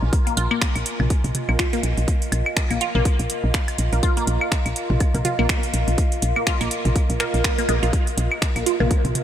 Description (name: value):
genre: minimal techno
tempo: 123 BPM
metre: 4/4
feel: swing 58% on 16ths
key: unclear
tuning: A4 = 443 Hz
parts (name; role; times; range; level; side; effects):
- woody FM bass; bass; 0.0-9.1 s; Bb1; -22 LUFS; equal; sidechain pumping
- warbly tape-like pad; texture; 0.0-9.2 s; F4 to Ab5; -30 LUFS; right 1 dB; chorus, built-in reverb, sidechain pumping
- booming analog drum machine; drums; 0.1-9.2 s; finger snaps, hi-hat; -28 LUFS; right 1 dB; none
- electronic kick drum; drums; 0.1-9.0 s; none; -22 LUFS; equal; none
- resonant blip pluck; riff; 0.3-8.9 s; Ab3 to F4; -26 LUFS; equal; phaser, sidechain pumping, diffuse ambient delay
- electronic claves and toms; percussion; 0.5-9.2 s; none; -29 LUFS; equal; analog delay
- swell; sound effects; 7.1-7.9 s; none; -30 LUFS; right 3 dB; none
room: light reverb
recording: none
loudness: -18 LUFS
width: side -10 dB against mid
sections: 0.0-9.2 A section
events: fade-in on ambient pad 0.0-9.2; swell 7.1-7.9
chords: 0.0 Bbsus4